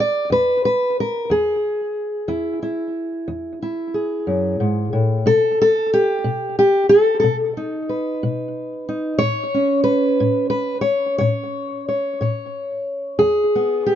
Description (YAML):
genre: acoustic country blues, solo or duo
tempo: 60 BPM (dotted quarters)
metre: 12/8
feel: straight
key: E major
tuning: A4 = 442 Hz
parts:
  - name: fingerpicked steel-string acoustic guitar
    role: solo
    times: 0.0-14.0 s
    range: E2 to D5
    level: -17 LUFS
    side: equal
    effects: tape echo
room: light reverb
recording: dark, warm production, nothing above 7.5 kHz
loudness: -17 LUFS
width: side -10 dB against mid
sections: 0.0-14.0 A section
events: none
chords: 0.0 E; 5.2 B; 9.2 A; 13.2 E